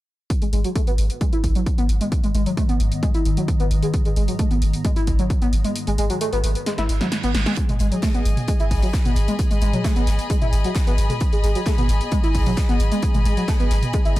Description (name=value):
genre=driving peak-time techno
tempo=132 BPM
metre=4/4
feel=straight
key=G# minor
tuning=A4 = 437 Hz
part: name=swarming drone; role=drone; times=2.0-7.6 s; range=G#2 to D#3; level=-30 LUFS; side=left 2 dB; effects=built-in reverb, sidechain pumping
part: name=electronic kick drum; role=drums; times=0.3-14.2 s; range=none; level=-20 LUFS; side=equal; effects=overdrive
part: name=techno drum kit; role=drums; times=0.3-14.2 s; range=hi-hat, snare drum, toms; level=-30 LUFS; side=equal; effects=overdrive, sidechain pumping on hats, sidechain pumping on toms
part: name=overdriven synth lead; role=riff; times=0.4-14.1 s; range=F#3 to E4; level=-25 LUFS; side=equal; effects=tube saturation, wide subtle chorus, sidechain pumping, dub echo
part: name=saturated sub bass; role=bass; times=0.4-14.2 s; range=G#1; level=-22 LUFS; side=equal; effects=tube saturation, sidechain pumping, low-pass filter
part: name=reverse cymbal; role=sound effects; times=6.9-7.6 s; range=none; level=-32 LUFS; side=right 8 dB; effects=none
part: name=gated 80s drum kit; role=drums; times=7.6-14.2 s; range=hi-hat, snare drum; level=-37 LUFS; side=left 2 dB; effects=sidechain pumping on hats, high-pass filter on hats, high-pass filter on snare, high-pass filter on room
part: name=warm chamber string section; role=texture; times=7.6-14.2 s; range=G#4 to B5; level=-29 LUFS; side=left 3 dB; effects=sidechain pumping
room=light reverb, small room reverb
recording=dark, warm production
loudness=-18 LUFS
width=side -16 dB against mid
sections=0.3-7.6 A section; 7.6-14.2 B section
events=filter sweep on analog synth lead 0.3-7.6; kick drops out 5.8-7.6; drum fill 6.7-7.6; reverse cymbal 6.9-7.6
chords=0.3 G#5; 7.6 G#m